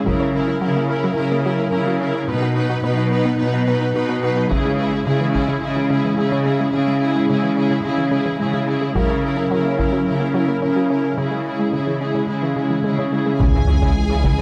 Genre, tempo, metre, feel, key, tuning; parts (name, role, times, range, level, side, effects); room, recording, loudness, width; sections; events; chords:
cinematic, hybrid orchestral and electronic film score; 108 BPM; 4/4; straight; C# minor; A4 = 440 Hz
rich symphonic viola section; accompaniment; 0.0-14.4 s; D#4 to B4; -27 LUFS; equal
hollow soft pad; sustained chords; 0.0-14.4 s; F#3 to B4; -26 LUFS; equal; ensemble chorus
analog pluck; arpeggios; 0.1-14.4 s; C#3 to B4; -28 LUFS; equal; chorus, digital delay
rich symphonic cello section; bass; 0.1-14.4 s; B2 to C#3; -23 LUFS; equal
taiko ensemble; drums; 0.1-1.1, 4.5-5.6, 9.0-10.1, 13.4-14.4 s; -25 LUFS; equal
warm symphonic violin section; melody; 13.4-14.4 s; G#5; -32 LUFS; equal
rich symphonic violin section; second line; 13.4-14.4 s; G#4; -33 LUFS; equal
mellow French horn section; sustained chords; 13.4-14.4 s; E3 to G#4; -32 LUFS; equal
rich chamber double bass section; bass; 13.4-14.3 s; C#2; -25 LUFS; equal
saturated sub bass; bass; 13.4-14.4 s; C#2; -22 LUFS; equal
sub drop; sound effects; 13.5-14.4 s; -28 LUFS; equal
moderate scoring stage reverb, RT60 1.8 s; close, detailed microphones; -19 LUFS; mono
0.0-13.4 A section; 13.4-14.4 B section
impact 13.4-14.4
0.1 F#7/C#; 2.3 B; 4.5 C#m; 9.0 F#7/C#; 11.2 C#m